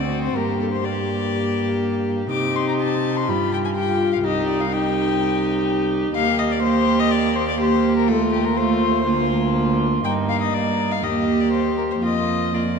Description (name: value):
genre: quick classical-period movement for string quartet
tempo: 123 BPM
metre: 4/4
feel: straight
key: unclear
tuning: A4 = 440 Hz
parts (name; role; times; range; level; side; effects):
- rich violin; melody; 0.0-12.8 s; G4 to D6; -24 LUFS; left 7 dB; none
- warm violin; second line; 0.0-12.6 s; Eb4 to G4; -25 LUFS; left 4 dB; none
- warm viola; accompaniment; 0.0-12.8 s; A3 to F4; -23 LUFS; right 2 dB; none
- rich cello; bass; 0.0-12.8 s; C2 to C3; -24 LUFS; right 6 dB; none
room: wet concert hall reverb, RT60 2.2 s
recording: dark, warm production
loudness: -18 LUFS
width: side -5 dB against mid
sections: 0.0-12.8 A section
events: none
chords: 0.4 Gm; 2.3 Cm; 3.3 G7; 4.2 Cm; 6.2 Ebmaj13; 8.1 F7/Eb; 9.1 Bb/D; 10.0 Eb/G; 11.0 Eb; 12.0 Bb/F